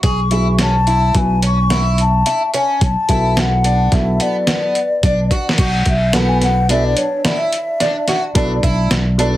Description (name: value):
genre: progressive instrumental, band music in an uneven meter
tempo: 108 BPM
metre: 5/4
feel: straight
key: B dorian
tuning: A4 = 442 Hz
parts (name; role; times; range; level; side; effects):
- picked twelve-string acoustic guitar; arpeggios; 0.0-9.4 s; B3 to G#4; -21 LUFS; right 1 dB; none
- fingered electric bass; bass; 0.0-9.4 s; B1; -16 LUFS; equal; none
- lo-fi sampler-style drum kit; drums; 0.0-9.3 s; crash cymbal, hi-hat, kick drum, snare drum; -18 LUFS; equal; overdrive
- mellow hollow concert flute; melody; 0.1-8.2 s; C#5 to C#6; -18 LUFS; left 2 dB; digital delay
- dark grand piano; accompaniment; 0.3-9.4 s; F#3 to B4; -22 LUFS; right 1 dB; none
room: moderate small room reverb, RT60 0.5 s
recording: heavily compressed radio sound, multiband compression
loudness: -13 LUFS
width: side -14 dB against mid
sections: 0.0-5.6 A section; 5.6-9.4 B section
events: drum fill 5.3; flute solo 5.6-9.4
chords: 0.0 C#m/B; 2.8 Bm7